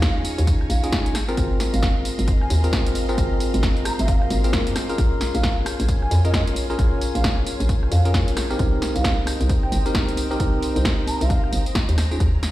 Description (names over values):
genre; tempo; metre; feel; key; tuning
UK garage, two-step garage; 133 BPM; 4/4; swing 61% on 16ths; unclear; A4 = 439 Hz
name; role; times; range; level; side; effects
baroque flute; melody; 0.0-11.5 s; Eb5 to Bb5; -31 LUFS; right 3 dB; digital delay
soft string machine; sustained chords; 0.0-12.5 s; C5 to Db6; -35 LUFS; equal; ensemble chorus, sidechain pumping
bell-like tine electric piano; stabs; 0.0-12.2 s; C4 to Bb4; -26 LUFS; left 1 dB; digital delay
hollow knocking FM bass; bass; 0.0-12.5 s; G1 to Ab2; -22 LUFS; equal; sidechain pumping
electronic kick drum; drums; 0.0-12.3 s; none; -23 LUFS; equal; none
punchy analog drum machine; drums; 0.0-12.5 s; hi-hat, rim click, snare drum, tambourine; -27 LUFS; equal; none
swell; sound effects; 4.3-5.0 s; none; -33 LUFS; left 5 dB; none
room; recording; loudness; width
light reverb, digital ambience; played on a big sound system in a bare room, stone room reverb; -18 LUFS; side -15 dB against mid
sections
0.0-12.5 A section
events
swell 4.3-5.0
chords
0.0 Eb9sus4; 1.1 Ab69; 5.0 Bbm7; 8.6 Cm7; 12.0 Absus2